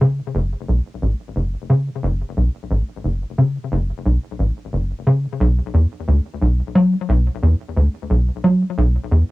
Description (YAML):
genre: ambient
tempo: 89 BPM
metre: 4/4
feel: straight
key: B minor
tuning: A4 = 440 Hz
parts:
  - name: tight sequencer bass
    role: solo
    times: 0.0-9.2 s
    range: F#1 to F#3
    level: -16 LUFS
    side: equal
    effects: wide subtle chorus, cassette tape, ping-pong delay
room: wet booth ambience, RT60 0.2 s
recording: home recording on cassette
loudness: -17 LUFS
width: side -19 dB against mid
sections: 0.0-9.3 A section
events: none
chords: none